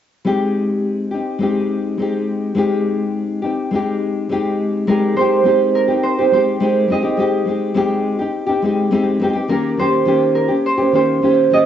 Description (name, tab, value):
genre	indie pop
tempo	104 BPM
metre	4/4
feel	straight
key	Ab major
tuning	A4 = 440 Hz
part	nylon-string guitar	accompaniment	0.2-11.7 s	Eb3 to G4	-16 LUFS	left 3 dB	lush chorus, vibrato effect, cassette tape
part	Celtic harp	melody	4.9-11.7 s	Bb4 to Eb5	-16 LUFS	right 6 dB	lush chorus, cassette tape, analog delay
room	wet studio reverb, RT60 0.6 s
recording	home recording on cassette, nothing above 7.8 kHz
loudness	-15 LUFS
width	side -10 dB against mid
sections	0.2-4.9 A section; 4.9-11.7 B section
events	none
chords	0.2 Abmaj7; 9.5 Eb7